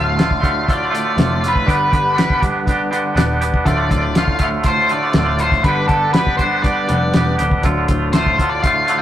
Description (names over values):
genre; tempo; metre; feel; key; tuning
psychedelic rock; 121 BPM; 4/4; straight; D dorian; A4 = 440 Hz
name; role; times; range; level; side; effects
octave-fuzz lead guitar; melody; 0.0-9.0 s; A4 to G5; -19 LUFS; left 1 dB; distortion
twangy electric guitar; riff; 0.0-9.0 s; D2 to G4; -18 LUFS; right 1 dB; harmonic tremolo
picked electric bass; bass; 0.0-8.8 s; D1 to G1; -22 LUFS; equal; none
cloth-damped thuddy drum kit; drums; 0.2-9.0 s; hi-hat, kick drum, snare drum; -18 LUFS; equal; none
room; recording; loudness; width
moderate stone room reverb, RT60 1.0 s; rough rehearsal-room recording; -14 LUFS; side -11 dB against mid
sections
0.0-9.0 A section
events
none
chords
0.0 Dm; 1.7 G; 3.7 Dm; 5.6 G; 7.6 Dm